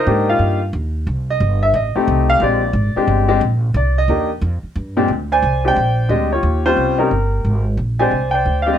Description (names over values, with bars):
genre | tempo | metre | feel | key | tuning
jazz | 179 BPM | 4/4 | swing 64% on 8ths | Bb mixolydian | A4 = 435 Hz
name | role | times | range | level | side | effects
warm grand piano | melody | 0.0-8.8 s | Bb2 to Ab5 | -16 LUFS | left 1 dB | none
upright bass | bass | 0.1-8.8 s | G1 to Ab2 | -18 LUFS | right 1 dB | none
room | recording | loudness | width
light reverb | none | -14 LUFS | side -9 dB against mid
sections
0.0-5.1 A section; 5.1-8.8 B section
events
grand piano solo 0.0-5.1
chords
0.0 Cm7; 1.1 F9/G (rootless); 2.4 Bb13; 3.8 Cm7; 4.4 Fsus2; 5.1 Bb13; 6.4 Eb13; 7.8 Bb13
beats
0.07 0.41 0.74 | 1.07 1.41 1.74 2.08 | 2.41 2.75 3.08 3.42 | 3.75 4.09 4.42 4.76 | 5.09 5.43 5.76 6.10 | 6.43 6.77 7.10 7.44 | 7.78 8.11 8.45 8.78